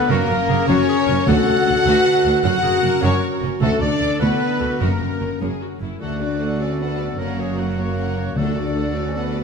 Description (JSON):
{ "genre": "cinematic", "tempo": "102 BPM (dotted quarters)", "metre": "6/8", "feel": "straight", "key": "unclear", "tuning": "A4 = 440 Hz", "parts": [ { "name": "rich symphonic violin section", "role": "melody", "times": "0.0-9.4 s", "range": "A4 to F#5", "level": "-30 LUFS", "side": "left 3 dB", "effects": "none" }, { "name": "bright clarinet", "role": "second line", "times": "0.0-9.4 s", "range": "D4 to B4", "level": "-30 LUFS", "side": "left 1 dB", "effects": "none" }, { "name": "clear oboe", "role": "second line", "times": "0.0-9.4 s", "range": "F#4 to F#5", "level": "-30 LUFS", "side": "right 1 dB", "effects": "none" }, { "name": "warm symphonic violin section", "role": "second line", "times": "0.0-9.4 s", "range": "A4 to F#5", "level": "-32 LUFS", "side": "left 2 dB", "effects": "none" }, { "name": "rich symphonic viola section", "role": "accompaniment", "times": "0.0-9.4 s", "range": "A3 to C#5", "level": "-29 LUFS", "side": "equal", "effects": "none" }, { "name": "dark French horn section", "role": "sustained chords", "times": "0.0-9.4 s", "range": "A3 to F#4", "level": "-21 LUFS", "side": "left 2 dB", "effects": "none" }, { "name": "concert harp", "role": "arpeggios", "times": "0.0-9.4 s", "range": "F#2 to A#5", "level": "-28 LUFS", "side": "left 12 dB", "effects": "none" }, { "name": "mellow trumpet", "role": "stabs", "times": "0.0-5.4 s", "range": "A4 to F#5", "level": "-26 LUFS", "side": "right 2 dB", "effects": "none" }, { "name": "clear symphonic cello section", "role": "bass", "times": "0.1-9.4 s", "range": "D2 to F#2", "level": "-24 LUFS", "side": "right 3 dB", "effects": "none" }, { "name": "warm symphonic double bass section", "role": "bass", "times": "0.1-9.4 s", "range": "F#1 to D2", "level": "-26 LUFS", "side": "right 5 dB", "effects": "none" }, { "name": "timpani", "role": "percussion", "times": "1.3-1.8, 8.4-8.9 s", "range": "D3", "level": "-26 LUFS", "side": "left 2 dB", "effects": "none" }, { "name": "mellow hollow silver concert flute", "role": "second line", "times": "6.0-9.3 s", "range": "C#5 to D5", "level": "-34 LUFS", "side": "left 2 dB", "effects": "none" } ], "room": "wet scoring stage reverb, RT60 1.8 s", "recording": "none", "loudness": "-17 LUFS", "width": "side -5 dB against mid", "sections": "0.0-6.0 A section; 6.0-9.4 B section", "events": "none", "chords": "0.1 F#; 1.3 D; 2.4 F#; 3.6 D; 4.8 F#; 6.0 D; 7.2 F#; 8.4 D" }